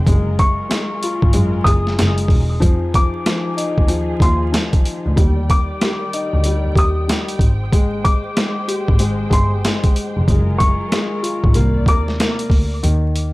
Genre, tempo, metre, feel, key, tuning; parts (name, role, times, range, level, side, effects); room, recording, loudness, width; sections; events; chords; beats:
hip hop, boom-bap hip-hop; 94 BPM; 4/4; swing 62% on 16ths; F dorian; A4 = 436 Hz
dark grand piano; accompaniment; 0.0-13.3 s; Eb3 to Bb4; -23 LUFS; left 2 dB; cassette tape, high-pass filter, low-pass filter
dark studio string section; sustained chords; 0.0-12.8 s; C3 to G5; -31 LUFS; right 1 dB; high-pass filter, low-pass filter
warm double bass; bass; 0.0-13.3 s; E1 to Gb2; -18 LUFS; equal
boom bap sampler-style drum kit; drums; 0.1-13.3 s; hi-hat, kick drum, snare drum; -16 LUFS; equal; overdrive
dark upright piano; melody; 0.4-12.1 s; C6 to Eb6; -23 LUFS; left 1 dB; high-pass filter, low-pass filter, tape echo
studio ambience; vinyl crackle; -14 LUFS; side -20 dB against mid
0.0-12.8 A section
kick muted 12.8-13.3
0.1 Gbmaj9; 2.6 Fm7; 5.2 Ebmaj7; 7.4 Abmaj7; 10.3 Gbmaj9; 11.6 C9; 12.8 N.C.
| 0.07 0.70 1.34 1.98 | 2.62 3.26 3.90 4.53 | 5.17 5.81 6.45 7.09 | 7.72 8.36 9.00 9.64 | 10.28 10.92 11.55 12.19 | 12.83